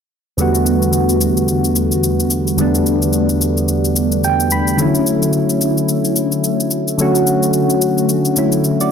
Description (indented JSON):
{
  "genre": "amapiano",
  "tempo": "109 BPM",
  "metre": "4/4",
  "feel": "swing 58% on 16ths",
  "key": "E dorian",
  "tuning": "A4 = 440 Hz",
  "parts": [
    { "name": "soft electric-piano-like synth keys", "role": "accompaniment", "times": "0.4-8.9 s", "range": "E2 to B5", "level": "-14 LUFS", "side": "equal", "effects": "chorus, phaser" },
    { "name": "shaker", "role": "drums", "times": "0.4-8.9 s", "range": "none", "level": "-21 LUFS", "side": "left 4 dB", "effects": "none" }
  ],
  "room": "moderate plate reverb, RT60 2.0 s",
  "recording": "dense, heavily limited modern master",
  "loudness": "-13 LUFS",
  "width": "side -7 dB against mid",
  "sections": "0.4-8.9 A section",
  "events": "synth keys fill 4.0-4.8",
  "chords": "0.4 Em11; 4.8 Dmaj7"
}